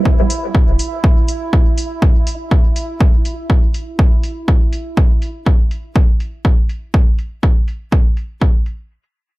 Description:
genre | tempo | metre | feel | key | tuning
dub techno | 122 BPM | 4/4 | swing 56% on 16ths | unclear | A4 = 442 Hz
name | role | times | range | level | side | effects
bubbling stepped-filter texture | texture | 0.0-5.0 s | E4 | -27 LUFS | right 4 dB | chorus, built-in reverb, sidechain pumping
electronic kick drum | drums | 0.1-8.5 s | none | -12 LUFS | equal | none
electronic hi-hat | drums | 0.3-8.8 s | none | -28 LUFS | left 1 dB | overdrive, low-pass filter on hats, low-pass filter on room
warm sub bass | bass | 0.7-0.8 s | E1 | -18 LUFS | equal | sidechain pumping
room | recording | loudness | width
digital ambience | none | -13 LUFS | side -19 dB against mid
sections
0.0-8.9 A section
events
none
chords
none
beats
0.05 0.55 | 1.04 1.53 2.02 2.51 | 3.00 3.50 3.99 4.48 | 4.97 5.46 5.96 6.45 | 6.94 7.43 7.92 8.41

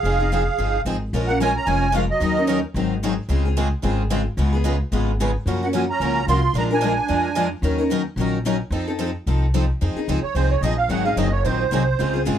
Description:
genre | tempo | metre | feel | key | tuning
acoustic string swing (jazz manouche) | 221 BPM | 4/4 | swing 56% on 8ths | Bb minor | A4 = 440 Hz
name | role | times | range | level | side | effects
musette accordion | melody | 0.0-2.6, 5.6-7.5 s | Eb5 to C6 | -22 LUFS | right 3 dB | none
musette accordion | second line | 0.0-2.6, 5.6-7.5, 10.2-12.2 s | Gb3 to Gb5 | -25 LUFS | right 6 dB | none
picked steel-string acoustic guitar | accompaniment | 0.0-12.4 s | Db3 to Bb4 | -24 LUFS | left 5 dB | none
upright bass | bass | 0.0-12.4 s | F1 to Ab2 | -22 LUFS | equal | none
picked swing-style acoustic guitar | accompaniment | 0.1-12.4 s | Db3 to Bb4 | -29 LUFS | right 6 dB | none
room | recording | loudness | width
light reverb | close, detailed microphones | -19 LUFS | side -10 dB against mid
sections
0.0-1.1 A section; 1.1-9.8 B section; 9.8-12.4 C section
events
accordion solo 9.8-12.4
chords
0.0 Fm7; 1.1 Bbm7; 2.2 Ebm7; 2.7 Ab7; 3.3 Dbmaj7; 4.4 Db7; 5.5 Gbmaj7; 6.5 Bb7; 7.6 Ebm7; 8.7 F7; 9.8 Fm7; 10.9 Ab7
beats
| 0.03 0.30 0.58 0.85 | 1.12 1.39 1.66 1.94 | 2.21 2.48 2.75 3.02 | 3.29 3.56 3.83 4.11 | 4.38 4.65 4.92 5.19 | 5.46 5.73 6.00 6.28 | 6.55 6.82 7.09 7.36 | 7.63 7.91 8.18 8.45 | 8.72 8.99 9.26 9.54 | 9.81 10.08 10.35 10.62 | 10.89 11.17 11.44 11.71 | 11.98 12.26

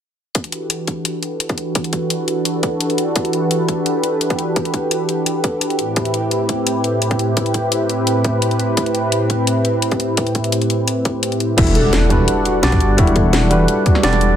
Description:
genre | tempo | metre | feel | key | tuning
liquid drum and bass | 171 BPM | 4/4 | straight | E minor | A4 = 440 Hz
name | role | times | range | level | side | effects
garage drum kit | drums | 0.3-14.3 s | crash cymbal, hi-hat, snare drum | -22 LUFS | left 2 dB | none
warm analog pad | sustained chords | 0.4-14.4 s | A2 to F#5 | -18 LUFS | equal | chorus
electronic kick drum | drums | 0.4-13.9 s | none | -18 LUFS | equal | high-pass filter on kick
bright tine electric piano | accompaniment | 11.6-14.4 s | G3 to D5 | -18 LUFS | right 1 dB | ping-pong delay
felt-muted upright piano | arpeggios | 11.6-14.4 s | E4 to A4 | -22 LUFS | left 3 dB | ping-pong delay
dark detuned saw bass | bass | 11.6-14.4 s | E1 to B1 | -16 LUFS | equal | none
impact | sound effects | 11.6-13.0 s | none | -23 LUFS | equal | none
room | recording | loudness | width
light reverb, digital ambience | none | -15 LUFS | side -9 dB against mid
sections
0.4-11.6 A section; 11.6-14.4 B section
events
drop 11.6-14.4; impact 11.6-13.0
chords
0.4 Em11; 5.8 Am9; 11.6 Em11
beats
| 0.35 0.70 1.05 1.41 | 1.76 2.11 2.46 2.81 | 3.16 3.51 3.86 4.21 | 4.56 4.91 5.26 5.62 | 5.97 6.32 6.67 7.02 | 7.37 7.72 8.07 8.42 | 8.77 9.12 9.47 9.83 | 10.18 10.53 10.88 11.23 | 11.58 11.93 12.28 12.63 | 12.98 13.34 13.69 14.04

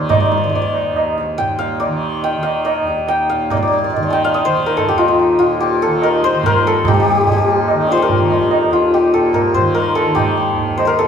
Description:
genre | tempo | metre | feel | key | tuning
indian classical, Hindustani | 143 BPM | 4/4 | straight | Eb raga yaman | A4 = 439 Hz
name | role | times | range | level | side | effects
santur | melody | 0.0-11.1 s | D4 to A5 | -15 LUFS | left 2 dB | none
tanpura | drone | 0.0-11.1 s | Eb2 to Eb3 | -23 LUFS | right 2 dB | none
tabla | percussion | 0.1-11.1 s | none | -19 LUFS | right 2 dB | none
room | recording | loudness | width
wet stone room reverb, RT60 1.3 s | band playing live in one room | -13 LUFS | side -7 dB against mid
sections
0.0-3.5 A section; 3.5-11.1 B section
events
speeding up 0.0-11.1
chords
none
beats
| 0.11 0.53 0.96 1.39 | 1.81 2.23 2.66 3.08 | 3.50 3.92 4.34 4.76 | 5.18 5.60 6.02 6.44 | 6.85 7.27 7.69 8.10 | 8.52 8.93 9.34 9.75 | 10.16 10.58 10.99

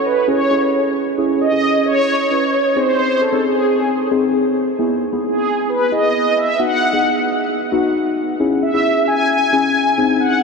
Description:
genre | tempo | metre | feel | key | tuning
pop | 133 BPM | 4/4 | straight | C# minor | A4 = 439 Hz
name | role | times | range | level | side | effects
mellow synth brass | melody | 0.0-10.4 s | G#4 to G#5 | -17 LUFS | equal | chorus, ping-pong delay
muted felt-like synth keys | accompaniment | 0.0-10.4 s | B3 to B4 | -18 LUFS | left 1 dB | chorus, phaser
room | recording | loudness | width
wet cathedral reverb, RT60 6.7 s | dreamy mix soaked in reverb | -14 LUFS | side -4 dB against mid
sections
0.0-1.2 A section; 1.2-10.4 B section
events
none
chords
0.3 C#m; 2.8 G#; 4.8 E; 6.6 B; 8.4 C#m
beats
0.28 0.73 | 1.18 1.63 2.08 2.54 | 2.99 3.44 3.89 4.34 | 4.79 5.24 5.69 6.14 | 6.59 7.05 7.50 7.95 | 8.40 8.85 9.30 9.75 | 10.20

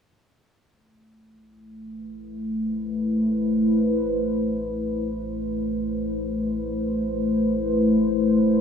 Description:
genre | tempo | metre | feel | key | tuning
ambient, sequencer-driven space music | free time | none | none | A minor | A4 = 440 Hz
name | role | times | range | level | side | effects
sweeping resonant pad | sustained chords | 1.9-8.6 s | A3 to C5 | -22 LUFS | left 1 dB | chorus
warm sub bass | bass | 0.6-8.6 s | A1 | -39 LUFS | left 1 dB | tube saturation
room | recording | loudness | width
wet lush hall reverb, RT60 2.9 s | dreamy mix soaked in reverb | -22 LUFS | side -7 dB against mid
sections
0.6-8.6 A section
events
fade-in on sub bass 0.6-8.6; filter sweep on analog synth pad 0.6-8.6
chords
0.6 Am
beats
free time

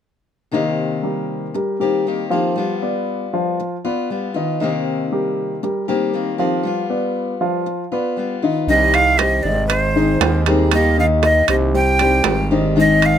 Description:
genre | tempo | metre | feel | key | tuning
latin, Cuban son and guajira | 118 BPM | 4/4 | straight | C minor | A4 = 443 Hz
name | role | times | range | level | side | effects
picked steel-string acoustic guitar | accompaniment | 0.5-13.2 s | C3 to Ab4 | -22 LUFS | left 4 dB | none
dark concert grand piano | arpeggios | 0.5-13.2 s | Eb3 to F5 | -20 LUFS | left 1 dB | none
breathy bright jazz flute | melody | 8.7-13.2 s | C5 to G5 | -17 LUFS | right 2 dB | none
growling FM bass | bass | 8.7-13.2 s | Ab1 to Eb2 | -19 LUFS | right 2 dB | none
timbales | percussion | 8.9-13.2 s | none | -20 LUFS | right 9 dB | none
room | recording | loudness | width
light reverb | close, detailed microphones | -16 LUFS | side -9 dB against mid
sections
0.5-8.7 A section; 8.7-13.2 B section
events
none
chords
0.5 Cm7; 2.6 G7; 4.6 Cm7; 6.7 G7; 8.7 Cm; 9.7 Ab; 10.7 Eb; 11.8 Cm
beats
| 0.53 1.04 1.55 2.06 | 2.57 3.08 3.59 4.10 | 4.61 5.12 5.63 6.14 | 6.65 7.16 7.67 8.19 | 8.70 9.21 9.71 10.22 | 10.73 11.24 11.75 12.26 | 12.77

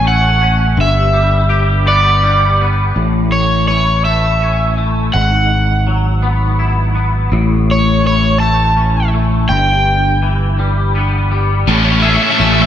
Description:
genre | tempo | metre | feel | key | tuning
post-rock | 55 BPM (dotted quarters) | 6/8 | straight | A major | A4 = 442 Hz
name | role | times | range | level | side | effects
crunchy overdriven guitar | melody | 0.0-12.7 s | C#5 to A5 | -15 LUFS | right 1 dB | slapback echo
twangy electric guitar | arpeggios | 0.0-12.7 s | G2 to G#4 | -18 LUFS | left 4 dB | ensemble chorus, slapback echo
picked electric bass | bass | 0.0-12.6 s | G1 to A1 | -14 LUFS | equal | none
distorted electric guitar | riff | 11.7-12.7 s | A3 to C#4 | -12 LUFS | left 1 dB | distortion
room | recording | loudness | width
light reverb | none | -11 LUFS | side -10 dB against mid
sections
0.0-3.0 A section; 3.0-11.7 B section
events
none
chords
0.0 Amaj7; 0.8 Em7/G; 3.0 A; 5.1 Eadd9/G#; 7.3 A; 9.5 Em/G; 11.7 Amaj7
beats
| 0.78 1.87 | 2.96 4.05 | 5.14 6.23 | 7.32 8.41 | 9.50 10.59 | 11.68

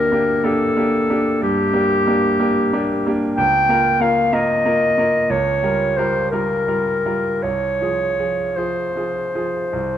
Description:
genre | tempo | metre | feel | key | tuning
classical, romantic duo for clarinet and grand piano | 52-64 BPM (dotted quarters) | 12/8 | rubato | F minor from 3.4 s | A4 = 439 Hz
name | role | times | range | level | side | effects
warm clarinet | melody | 0.0-10.0 s | G4 to G5 | -18 LUFS | left 1 dB | none
bright grand piano | accompaniment | 0.0-10.0 s | C2 to Bb4 | -20 LUFS | right 1 dB | none
room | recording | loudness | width
light reverb | close, detailed microphones | -16 LUFS | side -10 dB against mid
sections
0.0-10.0 A section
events
none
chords
0.0 Gm/D; 3.4 Bbm/Db; 5.3 Gm7b5/Db; 7.4 Fm/C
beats
0.45 1.42 2.40 | 3.38 4.33 5.31 6.33 | 7.44 8.57 9.73

